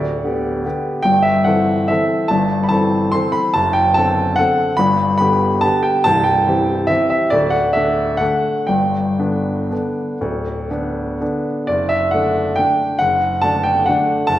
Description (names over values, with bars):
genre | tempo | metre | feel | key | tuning
classical, piano waltz | 115-154 BPM | 3/4 | rubato | unclear | A4 = 438 Hz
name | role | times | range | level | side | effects
clear baby grand piano | solo | 0.0-14.4 s | C1 to C6 | -14 LUFS | equal | none
room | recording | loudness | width
wet recital hall reverb, RT60 1.6 s | heard from further back in the room | -14 LUFS | side -13 dB against mid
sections
0.0-11.7 A section; 11.7-14.4 B section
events
none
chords
0.0 G; 1.0 Am7/G; 3.5 D7/F#; 4.8 G; 6.1 C; 7.3 D; 8.7 G; 11.7 D/F#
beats
0.23 0.65 | 1.05 1.46 1.90 | 2.31 2.71 3.13 | 3.55 3.96 4.38 | 4.78 5.20 5.63 | 6.06 6.47 6.90 | 7.32 7.75 8.21 | 8.69 9.19 9.71 | 10.21 10.70 11.21 | 11.70 12.13 12.58 | 13.01 13.43 13.88 | 14.29